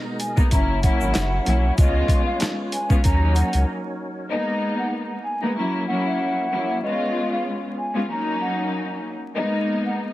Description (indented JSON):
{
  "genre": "hip hop, boom-bap hip-hop",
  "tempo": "95 BPM",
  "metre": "4/4",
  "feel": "swing 56% on 16ths",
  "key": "G# minor",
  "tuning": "A4 = 440 Hz",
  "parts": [
    { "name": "warm studio string section", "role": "accompaniment", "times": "0.0-10.1 s", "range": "F#3 to E#4", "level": "-24 LUFS", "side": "left 1 dB", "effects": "high-pass filter, low-pass filter" },
    { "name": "percussive tonewheel organ", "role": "sustained chords", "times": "0.0-4.3 s", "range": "B2 to D#5", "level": "-34 LUFS", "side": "right 1 dB", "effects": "overdrive, chorus vibrato, slow rotary speaker, high-pass filter, low-pass filter" },
    { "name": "breathy mellow concert flute", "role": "melody", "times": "0.2-10.0 s", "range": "D#5 to A#5", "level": "-28 LUFS", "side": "equal", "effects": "high-pass filter, low-pass filter, tape echo" },
    { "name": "boom bap sampler-style drum kit", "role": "drums", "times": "0.2-3.7 s", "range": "handclaps, hi-hat, kick drum, snare drum", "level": "-20 LUFS", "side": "equal", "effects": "none" },
    { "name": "egg shaker", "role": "percussion", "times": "0.2-3.7 s", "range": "none", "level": "-41 LUFS", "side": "right 7 dB", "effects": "none" },
    { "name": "saturated sub bass", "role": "bass", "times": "0.5-3.6 s", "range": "F#1 to D#2", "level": "-20 LUFS", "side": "equal", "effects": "none" }
  ],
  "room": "light reverb, small room ambience",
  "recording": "heavily compressed radio sound, vinyl crackle",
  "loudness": "-20 LUFS",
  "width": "side -16 dB against mid",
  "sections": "0.0-4.3 A section; 4.3-10.1 B section",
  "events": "break 3.7-4.3",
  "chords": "0.0 G#madd9; 0.5 F#7; 1.8 C#7; 3.0 D#m7; 4.3 G#madd9; 5.6 F#7; 6.8 C#7; 8.1 D#m7; 9.4 G#madd9"
}